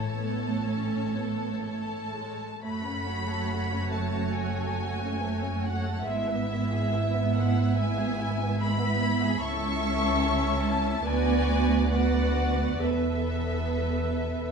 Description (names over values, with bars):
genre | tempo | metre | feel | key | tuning
classical, slow romantic movement for string orchestra | 71 BPM | 4/4 | uneven beats, rubato | F# minor, A major from 9.4 s | A4 = 440 Hz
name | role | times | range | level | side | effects
warm studio violin section | melody | 0.0-14.5 s | E5 to C#6 | -34 LUFS | left 2 dB | none
warm studio violin section | second line | 0.0-14.5 s | G#3 to E5 | -33 LUFS | left 2 dB | none
rich studio viola section | accompaniment | 0.0-14.5 s | G#3 to A4 | -31 LUFS | right 3 dB | none
warm studio cello section | bass | 0.0-14.5 s | C#2 to A2 | -31 LUFS | right 2 dB | none
warm studio double bass section | bass | 0.0-14.5 s | E1 to D2 | -32 LUFS | right 1 dB | none
room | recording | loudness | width
moderate recital hall reverb, RT60 1.8 s | small room ambience | -25 LUFS | side -6 dB against mid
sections
0.0-2.6 A section; 2.6-14.5 B section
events
none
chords
0.0 A; 2.6 F#m; 6.1 E/G#; 9.4 A/C#; 11.1 Bm/D; 12.8 Esus4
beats
0.66 1.64 | 2.61 3.48 4.35 5.24 | 6.07 6.94 7.79 8.61 | 9.43 10.24 11.06 11.91 | 12.80 13.77